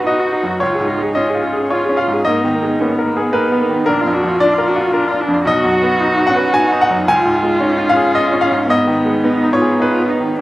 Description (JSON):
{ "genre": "neoclassical piano and strings", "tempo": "111 BPM", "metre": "3/4", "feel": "rubato", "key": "unclear", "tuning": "A4 = 440 Hz", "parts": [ { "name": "muted cello", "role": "second line", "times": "0.0-10.4 s", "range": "Cb4 to F#4", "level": "-20 LUFS", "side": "right 1 dB", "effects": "none" }, { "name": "bright baby grand piano", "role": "accompaniment", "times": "0.0-10.4 s", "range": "Bb1 to Ab5", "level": "-15 LUFS", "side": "left 1 dB", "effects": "none" }, { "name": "muted viola", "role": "accompaniment", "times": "0.0-10.4 s", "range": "Bb3 to Ab4", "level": "-19 LUFS", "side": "equal", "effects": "none" } ], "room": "light reverb", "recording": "recorded outdoors, with no room sound, lossy compression artefacts", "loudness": "-13 LUFS", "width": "side -16 dB against mid", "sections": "0.0-10.4 A section", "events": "none", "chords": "0.0 B; 0.6 Db; 2.2 Abmadd9; 3.9 Bb; 5.5 B; 7.1 Db; 8.7 Abm" }